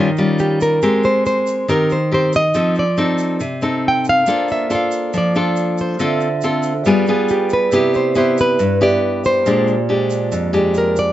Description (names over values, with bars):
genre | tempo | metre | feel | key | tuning
bossa nova | 139 BPM | 4/4 | straight | unclear | A4 = 440 Hz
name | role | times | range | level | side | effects
nylon-string guitar | melody | 0.0-11.1 s | G4 to G5 | -18 LUFS | right 1 dB | none
nylon-string guitar | accompaniment | 0.0-11.1 s | F2 to Bb4 | -17 LUFS | left 1 dB | none
egg shaker | percussion | 0.2-11.1 s | none | -39 LUFS | right 6 dB | none
vibraphone with medium hard mallets | accompaniment | 4.2-11.1 s | G3 to E5 | -23 LUFS | right 5 dB | none
room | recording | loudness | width
light reverb | nothing above 7.7 kHz | -14 LUFS | side -13 dB against mid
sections
0.0-11.1 A section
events
none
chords
0.0 Eb9; 0.8 Abmaj9; 2.5 F7; 4.3 Bbmaj7; 6.0 Dm7; 6.9 G7b9; 7.7 Cmaj7; 9.5 Bb13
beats
0.39 | 0.82 1.25 1.68 2.11 | 2.54 2.98 3.41 3.84 | 4.27 4.70 5.13 5.57 | 6.00 6.43 6.86 7.29 | 7.72 8.16 8.59 9.02 | 9.45 9.88 10.32 10.75